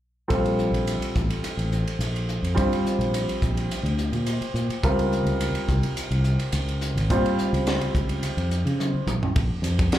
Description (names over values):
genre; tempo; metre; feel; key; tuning
electric jazz fusion; 106 BPM; 4/4; straight; unclear; A4 = 443 Hz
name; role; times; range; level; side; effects
clear baby grand piano; accompaniment; 0.3-9.0 s; G3 to C5; -27 LUFS; equal; slapback echo
fingered electric bass; bass; 0.3-9.9 s; Ab1 to Db3; -24 LUFS; equal; none
crisp fusion drum kit; drums; 0.3-10.0 s; hi-hat, kick drum, ride cymbal, snare drum, toms; -28 LUFS; equal; none
room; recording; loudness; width
light reverb, studio reverb; live gig heard through the venue's PA, club ambience; -22 LUFS; side -12 dB against mid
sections
0.3-9.4 A section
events
drum fill 8.8-9.4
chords
0.3 Bbmaj7sus2; 4.8 Dbmaj7; 9.1 N.C.; 9.4 Bb5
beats
| 0.30 0.87 1.44 2.01 | 2.57 3.14 3.71 4.27 | 4.84 5.41 5.97 6.54 | 7.10 7.67 8.23 8.80 | 9.36 9.93